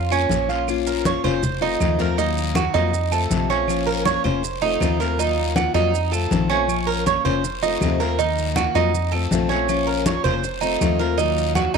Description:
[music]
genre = latin, Cuban son and guajira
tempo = 160 BPM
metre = 4/4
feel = straight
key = Bb minor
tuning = A4 = 440 Hz
[part]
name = Cuban tres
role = arpeggios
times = 0.0-11.8 s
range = Db4 to Db5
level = -22 LUFS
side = right 11 dB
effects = none
[part]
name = tight sequencer bass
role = bass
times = 0.0-11.8 s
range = F1 to F2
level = -26 LUFS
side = left 1 dB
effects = none
[part]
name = picked plugged-in steel-string acoustic guitar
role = accompaniment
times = 0.1-11.8 s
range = C3 to F4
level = -25 LUFS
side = left 12 dB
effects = none
[part]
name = claves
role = percussion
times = 0.1-11.7 s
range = none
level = -35 LUFS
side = right 12 dB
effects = none
[part]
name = congas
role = percussion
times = 0.1-11.8 s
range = none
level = -25 LUFS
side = left 3 dB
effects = none
[part]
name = maracas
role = percussion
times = 0.1-11.8 s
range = none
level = -34 LUFS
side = right 14 dB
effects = none
[part]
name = guiro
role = percussion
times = 0.3-11.8 s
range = none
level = -34 LUFS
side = left 15 dB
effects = none
[sound]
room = light reverb, small room reverb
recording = 1960s-style stereo with parts hard left and right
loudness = -18 LUFS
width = side -6 dB against mid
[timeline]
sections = 0.7-11.8 A section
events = none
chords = 0.0 Bbm; 1.4 F7; 2.2 Ebmadd9; 2.9 F7; 3.7 Bbm; 4.4 F7; 5.2 Ebmadd9; 5.9 F7; 6.7 Bbm; 7.4 F7; 8.2 Ebmadd9; 8.9 F7; 9.7 Bbm; 10.4 F7; 11.2 Ebmadd9

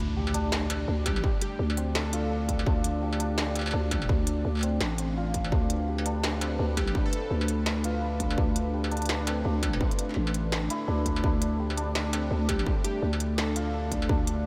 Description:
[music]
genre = half-time drum and bass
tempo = 168 BPM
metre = 4/4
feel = swing 59% on 16ths, half-time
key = D dorian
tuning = A4 = 441 Hz
[part]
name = dark analog pad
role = sustained chords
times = 0.5-14.5 s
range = A3 to D5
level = -37 LUFS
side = equal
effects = chorus, sidechain pumping
[part]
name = santur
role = arpeggios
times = 0.0-14.5 s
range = C4 to G4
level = -38 LUFS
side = equal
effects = diffuse ambient delay
[part]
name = growling 808-style bass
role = bass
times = 0.0-14.5 s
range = A1 to D2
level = -31 LUFS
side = equal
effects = none
[part]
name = impact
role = sound effects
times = 0.0-1.2 s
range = none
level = -42 LUFS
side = equal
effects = none
[part]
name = industrial drum kit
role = drums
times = 0.3-14.4 s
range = hi-hat, snare drum, struck metal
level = -36 LUFS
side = equal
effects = none
[part]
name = plucky unison lead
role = melody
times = 1.1-2.5, 6.8-7.5, 12.5-13.9 s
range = G4 to A4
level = -41 LUFS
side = equal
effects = diffuse ambient delay
[part]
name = electronic kick drum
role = drums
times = 1.1-14.2 s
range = none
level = -31 LUFS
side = equal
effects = distortion
[sound]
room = moderate huge ambient reverb, RT60 7.4 s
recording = dreamy mix soaked in reverb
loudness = -28 LUFS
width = mono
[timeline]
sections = 0.0-14.5 A section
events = impact 0.0-1.2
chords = 0.0 D5

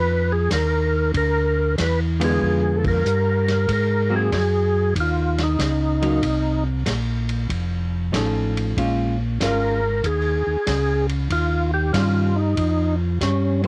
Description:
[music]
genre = soul jazz organ trio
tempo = 94 BPM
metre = 4/4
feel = swing 67% on 8ths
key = unclear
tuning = A4 = 438 Hz
[part]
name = percussive tonewheel organ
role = melody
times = 0.0-13.6 s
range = Db4 to Cb5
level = -24 LUFS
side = equal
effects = slow rotary speaker, overdrive, chorus vibrato, cassette tape
[part]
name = vintage hollow-body jazz guitar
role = accompaniment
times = 0.0-13.7 s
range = D3 to A4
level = -27 LUFS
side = equal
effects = none
[part]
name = tonewheel organ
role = bass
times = 0.0-13.7 s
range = F1 to Ab2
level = -24 LUFS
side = equal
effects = slow rotary speaker
[part]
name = warm soul drum kit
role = drums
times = 0.5-13.7 s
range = hi-hat, kick drum, ride cymbal, snare drum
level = -32 LUFS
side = equal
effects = none
[sound]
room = light reverb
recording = home recording on cassette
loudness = -21 LUFS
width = mono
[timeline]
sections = 0.0-13.7 A section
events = band accent 2.7-3.1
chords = 0.0 Db9 (rootless); 1.1 Ddim7; 3.7 Ab7sus2; 6.2 Bbsus2; 7.5 Faug7; 8.8 Bbm7; 11.3 Eb9

